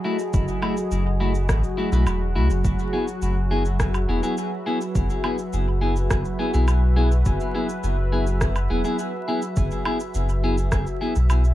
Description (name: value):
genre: ambient dub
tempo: 104 BPM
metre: 4/4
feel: straight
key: unclear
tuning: A4 = 440 Hz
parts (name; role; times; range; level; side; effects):
- warm analog pad; sustained chords; 0.0-11.5 s; F#3 to E5; -28 LUFS; equal; chorus
- clean electric guitar; stabs; 0.0-11.1 s; A3 to G#4; -27 LUFS; left 2 dB; dub echo
- electronic cabasa, woodblock and rim click; drums; 0.2-11.5 s; none; -32 LUFS; right 1 dB; dub echo
- warm sub bass; bass; 0.3-11.5 s; E1 to C#2; -21 LUFS; equal; none
- electronic kick drum; drums; 0.3-10.8 s; none; -26 LUFS; equal; overdrive
room: little or no reverb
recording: vinyl crackle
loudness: -20 LUFS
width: side -14 dB against mid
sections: 0.0-11.5 A section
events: none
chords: 0.0 F#m7; 2.6 E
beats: | 0.34 0.92 1.49 2.07 | 2.65 3.22 3.80 4.38 | 4.95 5.53 6.11 6.68 | 7.26 7.84 8.41 8.99 | 9.57 10.14 10.72 11.30